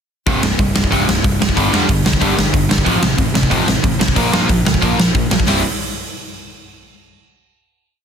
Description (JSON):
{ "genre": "punk rock", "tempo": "184 BPM", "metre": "4/4", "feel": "straight", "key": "unclear", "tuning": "A4 = 443 Hz", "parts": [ { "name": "crunchy overdriven guitar", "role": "riff", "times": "0.3-5.6 s", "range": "C2 to E4", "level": "-19 LUFS", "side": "left 10 dB", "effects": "none" }, { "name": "overdriven electric guitar", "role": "riff", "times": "0.3-5.6 s", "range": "C2 to E4", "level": "-19 LUFS", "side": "right 11 dB", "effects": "none" }, { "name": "fuzz picked electric bass", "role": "bass", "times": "0.3-5.6 s", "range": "C1 to G2", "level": "-21 LUFS", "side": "equal", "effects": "overdrive" }, { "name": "big rock drum kit", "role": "drums", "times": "0.3-5.6 s", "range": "hi-hat, kick drum, snare drum", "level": "-17 LUFS", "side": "equal", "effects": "none" } ], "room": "light reverb", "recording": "dense, heavily limited modern master", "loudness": "-13 LUFS", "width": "side -7 dB against mid", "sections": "0.3-5.5 verse; 5.5-6.8 final chord", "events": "none", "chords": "0.3 C5; 1.6 G5; 2.9 F/A; 4.2 Bb5; 5.5 C" }